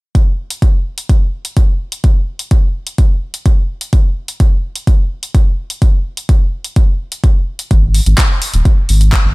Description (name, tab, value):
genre	progressive house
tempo	127 BPM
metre	4/4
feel	straight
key	unclear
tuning	A4 = 440 Hz
part	deep house drum kit	drums	0.1-9.2 s	handclaps, hi-hat	-20 LUFS	equal	sidechain pumping on hats, small room ambience
part	electronic kick drum	drums	0.1-9.2 s	none	-10 LUFS	equal	overdrive, small room ambience
part	round analog bass	bass	7.7-9.3 s	Eb1 to Ab1	-10 LUFS	equal	sidechain pumping
room	little or no reverb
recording	none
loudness	-11 LUFS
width	side -24 dB against mid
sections	0.1-9.3 A section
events	none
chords	none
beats	| 0.15 0.62 1.09 1.57 | 2.04 2.51 2.98 3.46 | 3.93 4.40 4.87 5.35 | 5.82 6.29 6.76 7.24 | 7.71 8.18 8.65 9.13